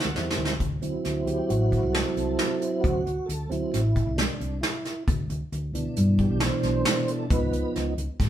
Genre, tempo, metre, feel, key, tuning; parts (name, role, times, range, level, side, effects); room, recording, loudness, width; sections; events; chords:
progressive instrumental, band music in an uneven meter; 134 BPM; 5/4; straight; D mixolydian; A4 = 440 Hz
mellow tonewheel organ; accompaniment; 0.0-7.9 s; B2 to C5; -27 LUFS; right 2 dB; chorus vibrato, slow rotary speaker
soft brush drum kit; drums; 0.0-8.3 s; hi-hat, kick drum, snare drum; -28 LUFS; equal
hollow-body short-scale fingered electric bass; bass; 0.1-8.3 s; G#1 to G2; -27 LUFS; equal
wet studio reverb, RT60 0.8 s; band playing live in one room; -23 LUFS; side -11 dB against mid
0.6-8.3 A section
drum fill 0.0-0.6; tonewheel organ solo 0.6-8.3
0.0 C; 0.6 D7; 5.1 Cmaj7/D; 7.3 C#7